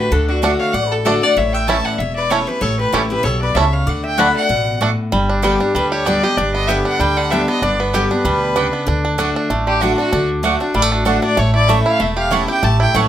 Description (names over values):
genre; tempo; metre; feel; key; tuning
bluegrass; 192 BPM; 4/4; swing 54% on 8ths; D major; A4 = 441 Hz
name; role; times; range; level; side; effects
clear fiddle; melody; 0.0-13.1 s; F#4 to B5; -20 LUFS; left 1 dB; none
lap resonator guitar; second line; 0.0-4.8 s; D4 to F#5; -21 LUFS; left 5 dB; none
picked steel-string acoustic guitar; accompaniment; 0.0-13.1 s; E2 to G4; -21 LUFS; left 2 dB; none
upright bass; bass; 0.1-13.1 s; E1 to D2; -21 LUFS; equal; none
bluegrass banjo; arpeggios; 0.4-13.1 s; D3 to G4; -19 LUFS; right 2 dB; none
mandolin; stabs; 0.4-13.1 s; A3 to A5; -21 LUFS; right 7 dB; none
room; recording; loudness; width
moderate studio reverb, RT60 0.5 s; none; -14 LUFS; side -11 dB against mid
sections
0.0-5.1 A section; 5.1-13.1 B section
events
none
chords
0.0 D; 1.4 A; 3.9 D; 5.1 G; 8.9 D; 11.4 A